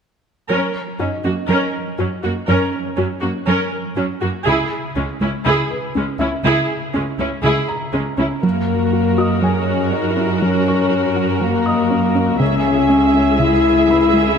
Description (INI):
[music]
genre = cinematic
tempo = 121 BPM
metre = 4/4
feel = straight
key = unclear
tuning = A4 = 440 Hz
[part]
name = rich symphonic viola section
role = accompaniment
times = 0.5-14.4 s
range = F#3 to E5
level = -20 LUFS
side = right 2 dB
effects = none
[part]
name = soft round pluck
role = arpeggios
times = 0.5-14.3 s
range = C#3 to F#4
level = -23 LUFS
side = equal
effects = chorus, digital delay
[part]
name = rich symphonic cello section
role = bass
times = 0.5-14.4 s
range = C#2 to F#2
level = -22 LUFS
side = right 3 dB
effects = none
[part]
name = felt-muted upright piano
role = texture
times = 1.0-14.4 s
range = C#4 to D#6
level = -29 LUFS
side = left 1 dB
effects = digital delay
[part]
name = dark French horn section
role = sustained chords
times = 8.4-14.2 s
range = A#3 to E4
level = -16 LUFS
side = left 5 dB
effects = none
[sound]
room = moderate scoring stage reverb, RT60 2.1 s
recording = none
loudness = -15 LUFS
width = side -7 dB against mid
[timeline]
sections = 0.5-8.4 A section; 8.4-14.4 B section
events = none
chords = 0.5 F#; 4.5 C#m; 8.4 F#; 12.4 C#m